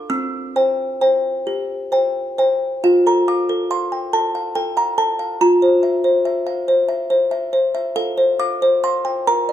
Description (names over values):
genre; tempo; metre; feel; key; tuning
classical, lullaby for music box; 43-47 BPM (dotted quarters); 6/8; rubato; F major; A4 = 445 Hz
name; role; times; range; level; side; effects
music box; solo; 0.0-9.5 s; C4 to E6; -16 LUFS; equal; none
room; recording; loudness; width
moderate recital hall reverb, RT60 1.4 s; dark, warm production; -16 LUFS; side -11 dB against mid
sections
0.0-2.8 A section; 2.8-9.5 B section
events
none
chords
0.1 C; 2.8 F; 5.4 C7/F; 8.0 F/A